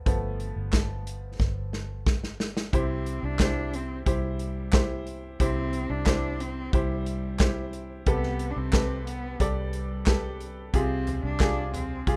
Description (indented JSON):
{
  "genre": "piano-driven pop",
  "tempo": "90 BPM",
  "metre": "4/4",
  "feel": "straight",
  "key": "C major",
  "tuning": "A4 = 440 Hz",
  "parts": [
    { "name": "bright upright piano", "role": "accompaniment", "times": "0.0-12.2 s", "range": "C3 to D5", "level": "-35 LUFS", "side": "equal", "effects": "plate reverb" },
    { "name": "vintage muted fingered electric bass", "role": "bass", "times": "0.0-12.2 s", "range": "G1 to C2", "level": "-35 LUFS", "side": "equal", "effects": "none" },
    { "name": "natural country drum kit", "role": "drums", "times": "0.1-12.2 s", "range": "handclaps, hi-hat, kick drum, snare drum, toms", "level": "-28 LUFS", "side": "equal", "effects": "none" },
    { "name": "warm cello", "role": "melody", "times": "2.7-12.2 s", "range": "G3 to D4", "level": "-37 LUFS", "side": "equal", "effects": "plate reverb" }
  ],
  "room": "light reverb",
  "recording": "rough home demo mix",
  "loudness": "-28 LUFS",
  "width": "mono",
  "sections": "0.0-2.7 A section; 2.7-12.2 B section",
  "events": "upright piano solo 0.0-2.7; drum fill 1.4-2.7",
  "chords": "0.0 G7; 2.7 C; 8.1 Gadd9/C; 10.7 Fmadd9/C"
}